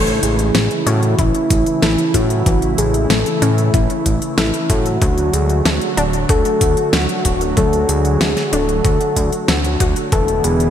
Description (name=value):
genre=synthwave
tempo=94 BPM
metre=4/4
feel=straight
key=unclear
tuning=A4 = 438 Hz
part: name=soft octave-layered synth lead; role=melody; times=0.0-10.7 s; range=E4 to A4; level=-20 LUFS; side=left 1 dB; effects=chorus, ping-pong delay
part: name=warm analog pad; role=sustained chords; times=0.0-10.7 s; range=C#3 to F#4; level=-21 LUFS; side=right 2 dB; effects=wide subtle chorus, sidechain pumping
part: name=analog pluck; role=arpeggios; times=0.0-10.4 s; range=E3 to A4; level=-26 LUFS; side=left 4 dB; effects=chorus, ping-pong delay
part: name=fat analog bass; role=bass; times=0.0-10.7 s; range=D1 to A2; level=-19 LUFS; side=equal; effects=none
part: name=pop drum kit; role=drums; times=0.1-10.7 s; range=hi-hat, snare drum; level=-21 LUFS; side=equal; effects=studio reverb
part: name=electronic kick drum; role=drums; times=1.2-10.2 s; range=none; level=-18 LUFS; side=equal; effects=studio reverb
room=moderate lush hall reverb, RT60 2.5 s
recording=bright 1980s-style digital production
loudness=-13 LUFS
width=side -9 dB against mid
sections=0.0-10.7 A section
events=none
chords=0.0 A; 5.0 D; 10.1 E7